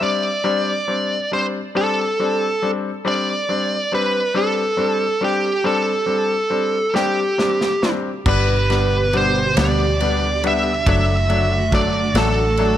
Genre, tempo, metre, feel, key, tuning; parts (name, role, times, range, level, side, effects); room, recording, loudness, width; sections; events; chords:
six-eight pop ballad; 46 BPM (dotted quarters); 6/8; straight; A4 = 440 Hz
bluesy overdriven lead guitar; melody; 0.0-12.8 s; G4 to E5; -19 LUFS; right 1 dB; distortion, analog delay
bright grand piano; accompaniment; 0.0-12.8 s; F#3 to D4; -22 LUFS; left 4 dB
modern studio drum kit; drums; 7.0-12.8 s; crash cymbal, kick drum, ride cymbal, snare drum; -25 LUFS; equal
warm studio string section; sustained chords; 8.3-12.8 s; B2 to G4; -25 LUFS; right 4 dB
vintage muted fingered electric bass; bass; 8.3-12.8 s; F#1 to D2; -21 LUFS; equal
light reverb, small room ambience; -16 LUFS; side -11 dB against mid
0.0-8.3 A section; 8.3-12.8 B section
drum fill 6.9-8.3
0.0 D7sus4; 8.3 G; 10.9 D/F#